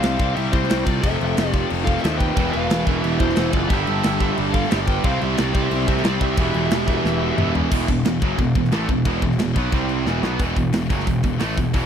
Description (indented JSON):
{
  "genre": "heavy metal",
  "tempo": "180 BPM",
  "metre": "4/4",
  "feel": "straight",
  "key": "E phrygian",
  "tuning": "A4 = 438 Hz",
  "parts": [
    { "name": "high-gain lead guitar", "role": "melody", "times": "0.0-7.5 s", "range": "C5 to G5", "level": "-28 LUFS", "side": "left 1 dB", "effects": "distortion, tape echo" },
    { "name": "high-gain lead guitar", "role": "second line", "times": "0.0-7.5 s", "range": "E4 to C5", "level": "-29 LUFS", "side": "right 5 dB", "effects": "distortion" },
    { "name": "heavy high-gain guitar", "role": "riff", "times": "0.0-11.9 s", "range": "E2 to C4", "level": "-27 LUFS", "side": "left 11 dB", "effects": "distortion" },
    { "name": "overdriven electric guitar", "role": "riff", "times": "0.0-10.4 s", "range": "E2 to C4", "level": "-27 LUFS", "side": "left 1 dB", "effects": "none" },
    { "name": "fuzz picked electric bass", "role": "bass", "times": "0.0-11.9 s", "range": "E1 to D#2", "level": "-24 LUFS", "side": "equal", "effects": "overdrive" },
    { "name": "tight metal drum kit", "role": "drums", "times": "0.0-11.8 s", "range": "crash cymbal, hi-hat, kick drum, snare drum, toms", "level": "-23 LUFS", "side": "equal", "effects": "none" },
    { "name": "high-gain distorted guitar", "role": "riff", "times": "2.4-11.9 s", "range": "E2 to C4", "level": "-25 LUFS", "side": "right 11 dB", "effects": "distortion" }
  ],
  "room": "small room reverb",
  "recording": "dry, close 1970s-style studio recording",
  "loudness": "-18 LUFS",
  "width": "side -8 dB against mid",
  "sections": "0.0-7.7 A section; 7.7-10.4 B section; 10.4-11.9 C section",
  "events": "drum fill 7.0-7.7, 10.1-10.4",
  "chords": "0.0 C; 1.0 F; 2.4 E5; 3.7 G5; 5.0 C5; 6.4 Em; 7.7 E5; 9.7 C5; 10.1 E5",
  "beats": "0.03 0.37 0.70 | 1.03 1.37 1.70 2.04 | 2.37 2.71 3.04 3.37 | 3.71 4.04 4.38 4.71 | 5.04 5.38 5.71 6.04 | 6.38 6.71 7.05 7.38 | 7.72 8.05 8.39 8.72 | 9.06 9.40 9.73 10.07 | 10.40 10.74 11.07 11.41 | 11.74"
}